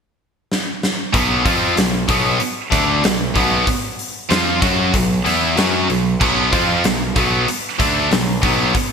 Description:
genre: hard rock.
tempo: 95 BPM.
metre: 4/4.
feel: straight.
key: unclear.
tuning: A4 = 438 Hz.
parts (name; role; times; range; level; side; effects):
big rock drum kit; drums; 0.5-8.9 s; crash cymbal, hi-hat, kick drum, snare drum; -20 LUFS; equal; none.
biting overdriven guitar; riff; 1.1-8.8 s; B2 to F#4; -20 LUFS; left 10 dB; none.
high-gain distorted guitar; riff; 1.1-8.8 s; B2 to F#4; -20 LUFS; right 10 dB; distortion.
overdriven semi-hollow guitar; riff; 1.1-8.8 s; B2 to F#4; -24 LUFS; left 1 dB; none.
overdriven picked electric bass; bass; 1.1-8.8 s; B1 to F#2; -23 LUFS; equal; none.
room: moderate lush hall reverb, RT60 2.0 s.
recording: bright 1980s-style digital production.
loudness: -14 LUFS.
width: side -6 dB against mid.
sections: 0.0-1.1 A section; 1.1-8.9 B section.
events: drum fill 0.5-1.1.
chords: 0.0 N.C.; 1.1 B5.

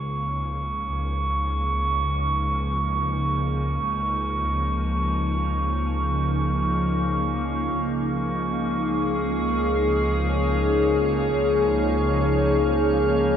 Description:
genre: ambient.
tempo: free time.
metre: none.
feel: none.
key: Db major.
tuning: A4 = 442 Hz.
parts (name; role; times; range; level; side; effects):
glassy FM pad; sustained chords; 0.0-13.4 s; F3 to Db5; -24 LUFS; left 1 dB; ensemble chorus, built-in reverb.
dark chamber double bass section; bass; 0.0-13.4 s; Db2; -27 LUFS; equal; none.
organ-like drone; drone; 0.0-13.4 s; Db3; -32 LUFS; equal; ensemble chorus, built-in reverb.
glass harmonica; texture; 0.0-13.4 s; Db6; -28 LUFS; right 3 dB; none.
room: wet huge ambient reverb, RT60 7.7 s.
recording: nothing above 10.7 kHz.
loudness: -21 LUFS.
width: side -8 dB against mid.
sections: 0.0-13.4 A section.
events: fade-in on ambient pad 0.0-13.4; fade-in on synth drone 0.0-13.4.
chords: 0.0 Db.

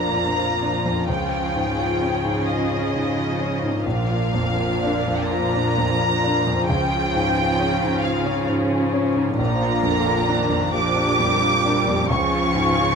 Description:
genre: cinematic, emotional film score for orchestra.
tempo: 44 BPM (dotted quarters).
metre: 6/8.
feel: rubato.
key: unclear.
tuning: A4 = 440 Hz.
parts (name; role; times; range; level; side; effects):
muted studio violin section; melody; 0.0-12.9 s; Eb5 to D6; -24 LUFS; equal; none.
muted studio violin section; second line; 0.0-12.9 s; F4 to Bb4; -28 LUFS; left 3 dB; none.
clear grand piano; accompaniment; 0.0-12.9 s; Bb1 to F4; -24 LUFS; left 2 dB; none.
muted studio viola section; accompaniment; 0.0-12.9 s; D3 to D4; -26 LUFS; right 3 dB; none.
muted studio cello section; bass; 0.0-12.9 s; Bb2 to Db3; -27 LUFS; right 3 dB; none.
room: moderate recital hall reverb, RT60 1.4 s.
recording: close, detailed microphones.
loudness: -18 LUFS.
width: side -6 dB against mid.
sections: 0.0-12.9 A section.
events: none.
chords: 0.0 Bb; 1.1 Db; 3.8 Bb; 6.7 Db; 9.4 Bb; 12.1 Db.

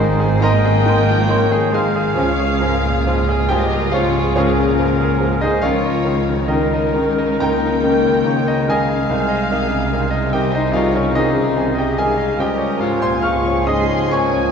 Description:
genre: classical.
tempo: 70 BPM.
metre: 4/4.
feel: uneven beats, rubato.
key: Ab major.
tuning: A4 = 439 Hz.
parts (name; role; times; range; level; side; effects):
clear concert grand piano; melody; 0.0-14.5 s; C2 to F6; -19 LUFS; left 2 dB; none.
muted chamber violin section; melody; 0.0-14.5 s; C4 to Bb4; -31 LUFS; left 4 dB; none.
mellow clarinet; second line; 0.0-14.5 s; Db4 to F5; -28 LUFS; left 2 dB; none.
mellow hollow silver concert flute; second line; 0.0-14.5 s; G5 to C6; -32 LUFS; right 1 dB; none.
muted studio violin section; second line; 0.0-14.5 s; Bb4 to Db6; -28 LUFS; left 2 dB; none.
warm oboe; second line; 0.0-14.5 s; Bb4 to Db6; -28 LUFS; right 1 dB; none.
dark bassoon; accompaniment; 0.0-14.5 s; Eb3 to F3; -26 LUFS; right 3 dB; none.
dark French horn section; sustained chords; 0.0-14.5 s; Db3 to F4; -24 LUFS; left 5 dB; none.
muted chamber cello section; bass; 0.0-14.5 s; C2 to Ab2; -24 LUFS; right 2 dB; none.
muted symphonic double bass section; bass; 0.0-14.5 s; Ab1 to Db2; -23 LUFS; right 5 dB; none.
muted chamber viola section; accompaniment; 0.4-14.5 s; Ab4 to Eb5; -26 LUFS; right 2 dB; none.
room: wet recital hall reverb, RT60 1.5 s.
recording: dark, warm production, nothing above 8.0 kHz.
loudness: -14 LUFS.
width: side -6 dB against mid.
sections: 0.0-14.5 A section.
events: none.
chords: 0.0 Ab; 2.2 Eb7/Db; 9.1 Ab/C; 12.4 Db.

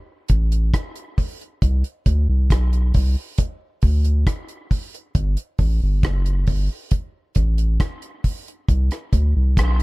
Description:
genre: dub reggae.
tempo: 68 BPM.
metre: 4/4.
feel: straight.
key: unclear.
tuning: A4 = 440 Hz.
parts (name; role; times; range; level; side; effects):
soft dub sub bass; bass; 0.3-9.8 s; F#1 to D2; -17 LUFS; equal; none.
deep reggae drum kit; drums; 0.3-9.8 s; hi-hat, kick drum, rim click; -21 LUFS; equal; none.
room: studio ambience.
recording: echo-heavy mix.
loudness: -18 LUFS.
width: side -23 dB against mid.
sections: 0.0-9.8 A section.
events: none.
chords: none.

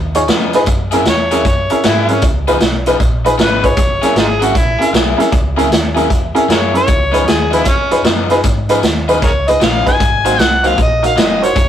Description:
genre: electric blues shuffle.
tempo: 154 BPM.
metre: 4/4.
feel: swing 65% on 8ths.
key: Db mixolydian.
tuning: A4 = 441 Hz.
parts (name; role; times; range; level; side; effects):
vintage muted fingered electric bass; bass; 0.0-11.7 s; F1 to Ab2; -20 LUFS; equal; none.
vintage drum kit; drums; 0.1-11.7 s; hi-hat, kick drum, snare drum; -15 LUFS; equal; none.
clear upright piano; accompaniment; 0.2-11.5 s; Db4 to Eb5; -15 LUFS; right 1 dB; none.
overdriven electric guitar; riff; 0.2-11.6 s; Ab2 to Ab4; -20 LUFS; left 3 dB; spring reverb.
overdriven harmonica; melody; 1.1-11.7 s; Db4 to Ab5; -15 LUFS; left 1 dB; none.
room: light reverb.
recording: rough rehearsal-room recording, warm saturation.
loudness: -10 LUFS.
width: side -10 dB against mid.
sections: 0.0-11.7 A section.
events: none.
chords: 0.0 Db9; 0.7 Gb9; 2.2 Db9; 3.8 Gb9; 6.9 Db9; 10.0 Ab9.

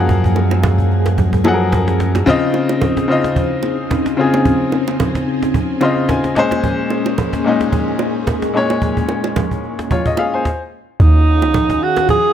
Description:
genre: amapiano.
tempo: 110 BPM.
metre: 4/4.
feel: swing 55% on 16ths.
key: unclear.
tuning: A4 = 440 Hz.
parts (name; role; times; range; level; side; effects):
bright grand piano; accompaniment; 0.0-10.6 s; Bb2 to C6; -17 LUFS; left 3 dB; none.
ensemble organ-string; sustained chords; 0.0-12.3 s; Db3 to Ab4; -21 LUFS; equal; phaser, ensemble chorus.
fat analog bass; bass; 0.0-2.2 s; Gb2; -15 LUFS; right 1 dB; none.
cajon; drums; 0.1-12.3 s; none; -21 LUFS; right 1 dB; none.
congas and bongos; percussion; 0.1-12.2 s; none; -23 LUFS; right 7 dB; none.
breathy alto saxophone; melody; 11.0-12.3 s; Eb4 to Ab4; -14 LUFS; right 2 dB; none.
deep log drum bass; bass; 11.0-11.8 s; Db2 to Eb2; -11 LUFS; right 1 dB; none.
room: light reverb, small room ambience.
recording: none.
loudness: -13 LUFS.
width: side -9 dB against mid.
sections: 0.0-11.0 A section; 11.0-12.3 B section.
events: grand piano fill 5.5-6.6; stop 10.5-11.0; drop 11.0-12.3.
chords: 0.0 Gbmaj13; 2.3 Dbmaj9; 6.4 Bbm9; 11.0 Ebm11.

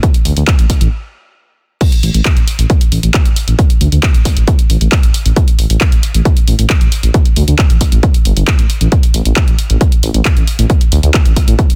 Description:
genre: driving peak-time techno.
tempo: 135 BPM.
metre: 4/4.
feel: straight.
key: unclear.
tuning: A4 = 440 Hz.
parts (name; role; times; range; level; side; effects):
electronic kick drum; drums; 0.0-11.7 s; none; -13 LUFS; equal; none.
punchy analog drum machine; drums; 0.0-11.8 s; crash cymbal, handclaps, hi-hat; -21 LUFS; equal; sidechain pumping on hats, sidechain pumping on cymbals.
dark detuned saw bass; bass; 0.3-11.5 s; G1 to D2; -14 LUFS; equal; sidechain pumping.
room: little or no reverb.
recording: dense, heavily limited modern master.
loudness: -11 LUFS.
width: mono.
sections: 0.0-1.8 A section; 1.8-11.8 B section.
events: stop 0.9-1.8; drop 1.8-11.8.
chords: none.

